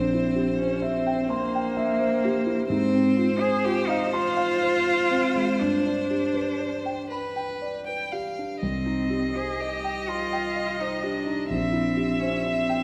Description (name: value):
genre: classical, slow romantic movement for piano trio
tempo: 41 BPM (dotted quarters)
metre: 6/8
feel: uneven beats, rubato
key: C minor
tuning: A4 = 440 Hz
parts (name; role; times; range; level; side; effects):
- rich violin; melody; 0.0-12.8 s; B4 to G5; -32 LUFS; equal; none
- rich cello; second line; 0.0-12.8 s; Bb3 to Ab4; -29 LUFS; equal; none
- dark concert grand piano; accompaniment; 0.0-12.8 s; Bb1 to C6; -29 LUFS; equal; none
room: wet concert hall reverb, RT60 2.0 s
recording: none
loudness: -25 LUFS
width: mono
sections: 0.0-12.8 A section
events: none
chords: 0.0 C7/Bb; 2.7 Fm/Ab; 5.6 G; 8.6 Cm; 11.5 C7/Bb